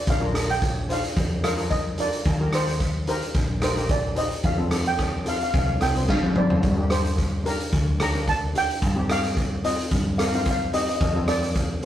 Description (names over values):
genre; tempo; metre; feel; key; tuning
calypso; 110 BPM; 4/4; straight; Bb major; A4 = 437 Hz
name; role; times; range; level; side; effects
steel pan; melody; 0.0-11.8 s; Bb4 to Bb5; -27 LUFS; equal; none
steel pan; accompaniment; 0.0-11.8 s; Bb3 to C5; -30 LUFS; left 1 dB; none
woody fretless electric bass; bass; 0.1-11.8 s; G1 to G2; -28 LUFS; equal; none
raw garage drum kit; drums; 0.1-11.8 s; hi-hat, kick drum, rim click, snare drum, toms; -24 LUFS; equal; none
room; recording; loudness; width
moderate studio reverb, RT60 0.6 s; rough rehearsal-room recording, tube saturation; -21 LUFS; side -11 dB against mid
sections
0.0-11.8 A section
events
drum fill 6.1-6.6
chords
0.1 Bb; 2.3 Eb; 4.5 F; 6.6 Gm; 8.8 Cm/G; 11.0 F